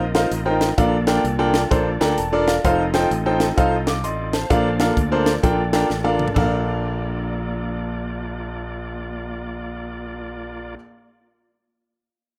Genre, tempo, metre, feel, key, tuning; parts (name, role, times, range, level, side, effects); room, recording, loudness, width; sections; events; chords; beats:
uptempo gospel; 129 BPM; 4/4; swing 64% on 8ths; Bb major; A4 = 442 Hz
clear concert grand piano; accompaniment; 0.0-10.8 s; Bb1 to D6; -23 LUFS; equal
bright tonewheel organ; sustained chords; 0.0-10.7 s; Bb3 to F5; -33 LUFS; equal; fast rotary speaker, overdrive
fingered electric bass; bass; 0.0-10.7 s; E1 to D2; -29 LUFS; equal
tight funk drum kit; drums; 0.1-6.5 s; hi-hat, kick drum, snare drum, splash cymbal, toms; -25 LUFS; equal
light reverb, small room ambience; rough home demo mix; -20 LUFS; mono
0.0-6.4 A section; 6.4-10.1 B section
grand piano fill 1.7-2.6; drum fill 5.9-6.4
0.0 F7sus4; 0.8 Bbmaj7; 2.6 F7; 4.5 Bbmaj7
0.32 | 0.78 1.25 1.71 2.18 | 2.64 3.11 3.57 4.04 | 4.50 4.97 5.43 5.90 | 6.36 6.83 7.29 7.76 | 8.22 8.69 9.15 9.62